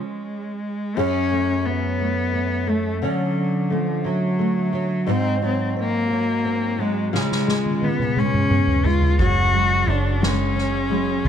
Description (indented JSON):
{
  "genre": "six-eight pop ballad",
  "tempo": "58 BPM (dotted quarters)",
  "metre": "6/8",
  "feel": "straight",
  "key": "F# harmonic minor",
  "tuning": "A4 = 437 Hz",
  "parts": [
    { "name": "warm cello", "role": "melody", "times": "0.0-11.3 s", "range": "E#3 to F#4", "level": "-22 LUFS", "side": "left 2 dB", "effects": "none" },
    { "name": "nylon-string guitar", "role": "accompaniment", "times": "0.0-11.3 s", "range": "F#2 to G#4", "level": "-23 LUFS", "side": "right 1 dB", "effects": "double-tracked left and right" },
    { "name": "fingerpicked steel-string acoustic guitar", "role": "arpeggios", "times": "0.0-0.5, 9.2-11.3 s", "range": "E#3 to C#4", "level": "-31 LUFS", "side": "right 7 dB", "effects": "none" },
    { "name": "soft-mallet drum kit", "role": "drums", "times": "7.1-11.1 s", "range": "kick drum, ride cymbal, snare drum, toms", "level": "-23 LUFS", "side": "equal", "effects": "none" },
    { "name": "vintage muted fingered electric bass", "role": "bass", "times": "9.2-11.3 s", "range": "F#1 to C#2", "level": "-22 LUFS", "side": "equal", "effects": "none" }
  ],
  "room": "light reverb, small room ambience",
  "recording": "dark, warm production",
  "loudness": "-19 LUFS",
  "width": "side -8 dB against mid",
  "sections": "1.0-11.3 A section",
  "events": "stop 0.0-1.0; drum fill 7.1-9.2",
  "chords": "0.0 C#5; 1.0 F#madd9; 3.0 Dmaj7; 5.1 G#7; 7.1 C#7; 9.2 F#sus2",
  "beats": "| 0.96 1.99 | 3.02 4.05 | 5.08 6.11 | 7.14 8.17 | 9.20 10.23 | 11.26"
}